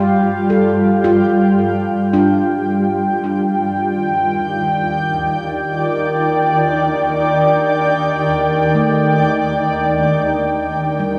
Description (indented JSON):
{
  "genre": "ambient",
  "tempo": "54 BPM",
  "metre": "4/4",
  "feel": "straight",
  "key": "unclear",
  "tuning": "A4 = 441 Hz",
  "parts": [
    { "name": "granular cloud pad", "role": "sustained chords", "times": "0.0-11.2 s", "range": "Eb3 to G5", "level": "-17 LUFS", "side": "equal", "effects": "built-in reverb" },
    { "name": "handpan", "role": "arpeggios", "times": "0.0-11.2 s", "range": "G3 to A4", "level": "-22 LUFS", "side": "equal", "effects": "tape echo" }
  ],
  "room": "wet plate reverb, RT60 2.5 s",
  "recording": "dreamy mix soaked in reverb, cassette tape",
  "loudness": "-16 LUFS",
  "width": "mono",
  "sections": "0.0-11.2 A section",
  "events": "filter sweep on ambient pad 0.0-11.2",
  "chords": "0.0 G5; 3.2 Ebmaj7"
}